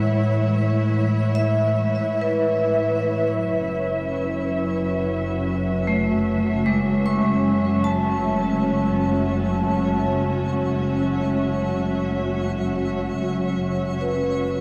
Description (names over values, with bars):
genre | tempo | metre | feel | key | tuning
ambient | free time | none | none | F# minor | A4 = 435 Hz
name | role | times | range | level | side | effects
dark studio string section | sustained chords | 0.0-14.6 s | A2 to E5 | -25 LUFS | equal | low-pass filter, shimmer reverb
vibraphone with hard mallets | arpeggios | 0.0-14.6 s | G#3 to C#6 | -26 LUFS | equal | tape echo, shimmer reverb
twinkling granular texture | texture | 0.0-14.6 s | C#5 to F#5 | -43 LUFS | equal | built-in reverb, shimmer reverb
muted symphonic double bass section | bass | 3.3-14.6 s | F#1 | -30 LUFS | equal | none
room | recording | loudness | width
wet huge ambient reverb, RT60 8.9 s | dark, warm production | -22 LUFS | mono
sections
0.0-3.3 A section; 3.3-14.6 B section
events
filter sweep on string section 0.0-3.3; fade-in on synth texture 3.3-14.6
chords
0.0 A; 3.3 F#m7